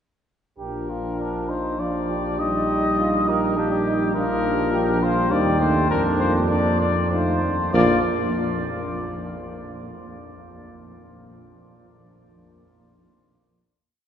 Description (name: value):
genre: classical, brass quintet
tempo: 100 BPM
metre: 3/4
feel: rubato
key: Bb major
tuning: A4 = 440 Hz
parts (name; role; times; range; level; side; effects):
- mellow cornet; melody; 0.6-8.0 s; G4 to Eb5; -25 LUFS; left 3 dB; none
- mellow flugelhorn; second line; 0.6-8.0 s; C4 to G4; -28 LUFS; right 2 dB; none
- warm French horn; accompaniment; 0.6-8.0 s; Bb3 to Eb4; -28 LUFS; equal; none
- warm euphonium; accompaniment; 0.6-8.0 s; F3 to Bb3; -27 LUFS; equal; none
- warm bass trombone; bass; 0.6-8.0 s; Bb1 to F2; -26 LUFS; right 1 dB; none
room: wet cathedral reverb, RT60 6.7 s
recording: heard from further back in the room, nothing above 10.5 kHz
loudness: -19 LUFS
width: side -8 dB against mid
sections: 0.6-7.7 A section; 7.7-9.6 final chord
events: none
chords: 0.6 Bb; 2.4 Eb/Bb; 4.2 Bb; 5.3 Cm/Eb; 5.9 Bb/F; 7.1 F7; 7.7 Bb5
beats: | 0.59 1.19 1.79 | 2.39 2.99 3.57 | 4.15 4.74 5.32 | 5.90 6.50 7.11 | 7.74